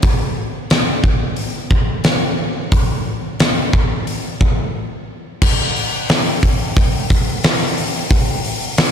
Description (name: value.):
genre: rock.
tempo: 89 BPM.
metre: 4/4.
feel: straight.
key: none.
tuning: none.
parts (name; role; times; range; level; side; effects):
huge arena drum kit; drums; 0.0-8.9 s; crash cymbal, hi-hat, kick drum, snare drum; -15 LUFS; equal; none.
room: light reverb.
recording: none.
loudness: -15 LUFS.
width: side -8 dB against mid.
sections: 0.0-5.4 A section; 5.4-8.9 B section.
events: break 4.7-5.4.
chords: none.